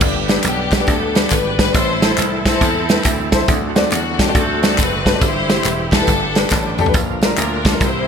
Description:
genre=uptempo gospel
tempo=138 BPM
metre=4/4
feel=swing 64% on 8ths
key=unclear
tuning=A4 = 439 Hz
part: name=warm upright piano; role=accompaniment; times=0.0-8.1 s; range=G2 to A5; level=-22 LUFS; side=left 4 dB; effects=lush chorus
part: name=bright tonewheel organ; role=sustained chords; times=0.0-8.1 s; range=D3 to A4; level=-26 LUFS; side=right 4 dB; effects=slow rotary speaker, overdrive, chorus vibrato
part: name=dry thumbed slap bass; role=bass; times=0.0-8.1 s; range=E1 to E2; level=-23 LUFS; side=equal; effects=none
part: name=natural country drum kit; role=drums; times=0.0-7.9 s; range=crash cymbal, hi-hat, kick drum, snare drum, toms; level=-17 LUFS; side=right 1 dB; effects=gated reverb
part: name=tambourine and handclaps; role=percussion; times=0.0-7.9 s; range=none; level=-27 LUFS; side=left 3 dB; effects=none
part: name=bright studio string section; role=melody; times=0.4-8.1 s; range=B3 to C5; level=-21 LUFS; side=left 3 dB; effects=ping-pong delay
room=moderate lush hall reverb, RT60 2.0 s, small room ambience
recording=bright 1980s-style digital production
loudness=-13 LUFS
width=side -7 dB against mid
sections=0.0-8.1 A section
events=upright piano fill 6.3-6.9; drum fill 6.5-6.9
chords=0.0 G; 1.7 Am; 3.5 D7; 5.2 C/G; 6.1 G; 6.9 Bb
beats=| 0.01 0.45 0.88 1.31 | 1.75 2.18 2.62 3.05 | 3.48 3.92 4.35 4.78 | 5.21 5.65 6.08 6.51 | 6.95 7.38 7.81

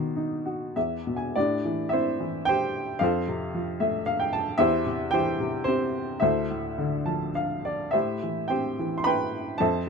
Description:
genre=classical, lyrical solo piano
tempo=96-115 BPM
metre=3/4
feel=rubato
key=A minor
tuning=A4 = 440 Hz
part: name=warm upright piano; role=solo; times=0.0-9.9 s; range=D2 to C6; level=-24 LUFS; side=equal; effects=none
room=light reverb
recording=close, detailed microphones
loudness=-24 LUFS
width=side -5 dB against mid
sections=0.0-1.4 A section; 1.4-9.9 B section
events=upright piano fill 0.5-1.4, 3.5-4.6, 6.8-7.9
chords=0.0 B; 0.8 E5; 1.4 Am7; 3.0 F; 4.6 C/E; 6.2 Dm9; 7.9 Am7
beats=0.17 0.76 | 1.36 1.93 2.48 | 3.01 3.55 4.07 | 4.59 5.12 5.66 | 6.22 6.78 7.35 | 7.94 8.50 9.06 | 9.61

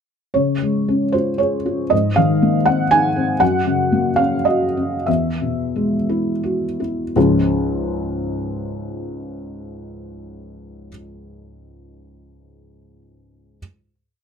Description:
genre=neoclassical minimalist piano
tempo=80-122 BPM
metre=3/4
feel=rubato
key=Db major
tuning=A4 = 440 Hz
part: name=felt-muted upright piano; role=solo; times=0.3-13.6 s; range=Db2 to Ab5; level=-17 LUFS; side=equal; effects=none
room=light reverb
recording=close, detailed microphones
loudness=-16 LUFS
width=side -7 dB against mid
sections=0.4-7.2 A section; 7.2-11.3 final chord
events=slowing down 2.7-7.2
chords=0.4 Db; 1.9 Abadd9; 3.4 Gb; 5.1 Eadd9; 7.2 Db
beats=| 0.35 0.89 1.40 | 1.92 2.42 2.91 | 3.41 3.92 4.46 | 5.07 5.74 6.43 | 7.15 7.86 8.56 | 9.26 9.94 10.63

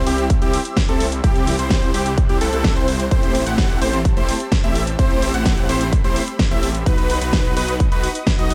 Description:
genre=EDM, festival progressive house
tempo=128 BPM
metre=4/4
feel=straight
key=unclear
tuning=A4 = 445 Hz
part: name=lush unison pad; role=sustained chords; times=0.0-8.5 s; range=G4 to F#6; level=-33 LUFS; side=equal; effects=chorus, phaser, sidechain pumping
part: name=unison lead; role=arpeggios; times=0.0-8.5 s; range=G4 to F#5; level=-27 LUFS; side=equal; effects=sidechain pumping, delay
part: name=supersaw chords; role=riff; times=0.0-8.5 s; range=A3 to F#5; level=-26 LUFS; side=equal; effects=sidechain pumping, delay
part: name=detuned saw bass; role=bass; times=0.0-8.5 s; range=A1 to C2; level=-26 LUFS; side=equal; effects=chorus, sidechain pumping
part: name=big-room dance drum kit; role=drums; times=0.1-8.5 s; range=hi-hat, snare drum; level=-27 LUFS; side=equal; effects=none
part: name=electronic kick drum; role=drums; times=0.3-8.4 s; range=none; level=-20 LUFS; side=equal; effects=none
room=little or no reverb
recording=none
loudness=-18 LUFS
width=mono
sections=0.0-8.5 A section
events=none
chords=0.0 C; 3.1 Am7; 6.9 B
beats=0.30 0.77 | 1.24 1.71 2.18 2.64 | 3.11 3.58 4.05 4.52 | 4.99 5.46 5.93 6.39 | 6.86 7.33 7.80 8.27

